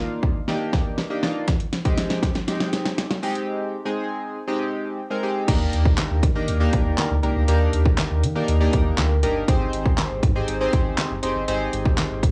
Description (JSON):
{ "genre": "dance-pop", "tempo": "120 BPM", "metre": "4/4", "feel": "straight", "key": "Eb major", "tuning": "A4 = 440 Hz", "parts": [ { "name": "chorused retro synth keys", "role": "accompaniment", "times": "0.0-12.2 s", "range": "Ab3 to C5", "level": "-28 LUFS", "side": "equal", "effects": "sidechain pumping, cassette tape" }, { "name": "pop drum kit", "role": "drums", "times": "0.2-12.3 s", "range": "crash cymbal, handclaps, hi-hat, kick drum, snare drum", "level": "-24 LUFS", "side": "equal", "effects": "cassette tape" }, { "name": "round analog bass", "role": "bass", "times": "5.5-12.3 s", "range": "Gb1 to Eb3", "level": "-25 LUFS", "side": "equal", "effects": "sidechain pumping" } ], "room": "light reverb", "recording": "home recording on cassette, studio reverb", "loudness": "-22 LUFS", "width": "mono", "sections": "0.0-5.5 A section; 5.5-12.3 B section", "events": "build-up 0.0-5.5; drum fill 0.0-3.5; break 3.5-5.5; drop 5.5-12.3", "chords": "0.0 Ebmaj7; 1.5 Abmaj7; 5.5 Ebmaj7; 9.5 Abmaj7" }